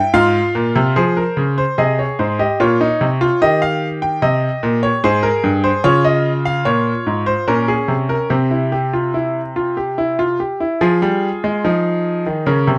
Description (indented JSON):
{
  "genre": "classical, baroque-style 3-part fugue for grand piano",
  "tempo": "73 BPM",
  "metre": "3/4",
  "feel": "straight",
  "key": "F minor",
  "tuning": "A4 = 441 Hz",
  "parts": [
    { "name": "bright grand piano", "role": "solo", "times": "0.0-12.8 s", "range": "G2 to G5", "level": "-17 LUFS", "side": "equal", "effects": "none" }
  ],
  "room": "light reverb",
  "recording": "dark, warm production",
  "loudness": "-17 LUFS",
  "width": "mono",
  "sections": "1.0-10.8 A section; 10.8-12.8 B section",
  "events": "none",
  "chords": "0.1 Fm/Ab; 1.0 Fm; 2.6 Bbm; 3.4 Eb; 5.0 Abmaj7; 5.8 Db; 7.5 Bbm; 8.3 C; 10.8 Fm"
}